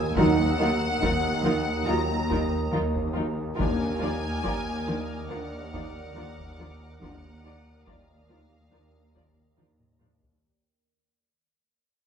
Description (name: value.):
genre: cinematic, suspense film score.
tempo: 70 BPM.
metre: 4/4.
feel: straight.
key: unclear.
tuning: A4 = 440 Hz.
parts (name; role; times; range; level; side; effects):
muted studio violin section; melody; 0.0-9.6 s; F5 to Bb5; -33 LUFS; left 2 dB; none.
deep dark ambient pad; sustained chords; 0.0-10.4 s; Eb4 to Bb5; -35 LUFS; right 5 dB; chorus, built-in reverb.
muted symphonic cello section; bass; 0.0-10.3 s; Eb2; -32 LUFS; equal; none.
muted symphonic double bass section; bass; 0.0-10.3 s; Eb2; -34 LUFS; left 1 dB; none.
organ-like drone; drone; 0.0-10.4 s; Eb2; -40 LUFS; right 1 dB; ensemble chorus, built-in reverb.
clear baby grand piano; texture; 0.0-10.5 s; Bb4 to Eb6; -39 LUFS; left 3 dB; none.
muted symphonic violin section; texture; 0.0-10.0 s; Bb5 to F6; -44 LUFS; left 3 dB; none.
muted symphonic violin section; second line; 0.2-10.1 s; F4 to Bb4; -35 LUFS; right 1 dB; none.
muted symphonic viola section; accompaniment; 0.2-10.1 s; F3 to D5; -35 LUFS; equal; none.
mellow French horn section; sustained chords; 0.2-9.1 s; Gb3 to F4; -29 LUFS; right 3 dB; none.
muted symphonic cello section; riff; 0.2-10.3 s; Eb3 to Eb4; -31 LUFS; left 1 dB; none.
taiko ensemble; drums; 0.2-10.6 s; none; -35 LUFS; equal; none.
room: moderate stone room reverb, RT60 1.1 s.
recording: dark, warm production.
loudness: -24 LUFS.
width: side -7 dB against mid.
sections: 0.0-10.4 A section.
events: fade-out 0.0-10.4; drum fill 9.6-10.4.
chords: 0.0 Ebmadd9; 3.6 Bb/Eb.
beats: | 0.16 1.02 1.87 2.73 | 3.59 4.44 5.30 6.16 | 7.02 7.87 8.73 9.59.